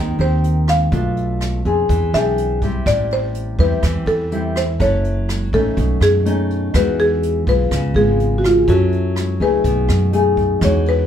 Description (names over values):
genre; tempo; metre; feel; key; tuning
bossa nova; 124 BPM; 4/4; straight; unclear; A4 = 440 Hz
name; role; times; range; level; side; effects
buzzing marimba with medium mallets; melody; 0.0-11.1 s; E#4 to F5; -19 LUFS; equal; none
nylon-string guitar; accompaniment; 0.0-11.1 s; A2 to A#4; -20 LUFS; left 3 dB; none
upright bass; bass; 0.0-11.1 s; F#1 to F#2; -19 LUFS; right 1 dB; none
jazz brush drum kit; drums; 0.2-11.0 s; hi-hat, kick drum, rim click; -25 LUFS; right 1 dB; none
room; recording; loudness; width
moderate studio reverb, RT60 0.5 s; heard from further back in the room; -15 LUFS; side -9 dB against mid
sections
0.0-10.6 A section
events
none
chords
0.0 G#maj9 (rootless); 0.9 Bm7b5; 1.9 E7b13; 2.9 Am7; 4.8 F#m7; 5.8 B9; 6.7 Emaj9; 7.7 C#7; 8.7 F#m7; 9.6 B6